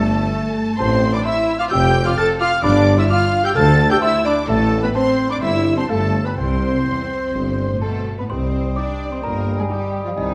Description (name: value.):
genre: cinematic, playful, whimsical film cue.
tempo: 129 BPM.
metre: 4/4.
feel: straight.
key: C major.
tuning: A4 = 441 Hz.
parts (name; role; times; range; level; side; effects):
trough xylophone with soft rubber mallets; melody; 0.0-10.3 s; Eb5 to F6; -30 LUFS; equal; none.
warm studio violin section; melody; 0.0-10.3 s; Eb4 to A6; -31 LUFS; equal; none.
concert flute; second line; 0.0-10.3 s; A4 to A5; -29 LUFS; equal; none.
rich studio violin section; second line; 0.0-10.3 s; Eb4 to A5; -33 LUFS; equal; none.
warm clarinet; second line; 0.0-10.3 s; Eb4 to A5; -29 LUFS; equal; none.
warm oboe; second line; 0.0-10.3 s; A4 to A5; -30 LUFS; equal; none.
rich studio viola section; accompaniment; 0.0-9.8 s; G3 to A4; -27 LUFS; equal; none.
mellow French horn section; sustained chords; 0.0-9.9 s; G3 to A4; -25 LUFS; equal; none.
clear studio cello section; bass; 0.0-10.3 s; D2 to D4; -27 LUFS; equal; none.
clear tuba; bass; 0.0-10.3 s; F1 to D2; -28 LUFS; equal; none.
rich studio double bass section; bass; 0.0-10.3 s; F1 to D2; -25 LUFS; equal; none.
dark bassoon; accompaniment; 8.3-10.3 s; G3; -31 LUFS; equal; none.
room: wet scoring stage reverb, RT60 1.9 s.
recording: dark, warm production.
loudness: -18 LUFS.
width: mono.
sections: 0.0-8.3 A section; 8.3-10.3 B section.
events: none.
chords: 0.0 Gsus2; 0.8 Dm9/A; 1.7 Fmaj13; 2.6 G5; 4.5 Amadd9; 5.4 C/G; 6.4 C; 8.3 Cm.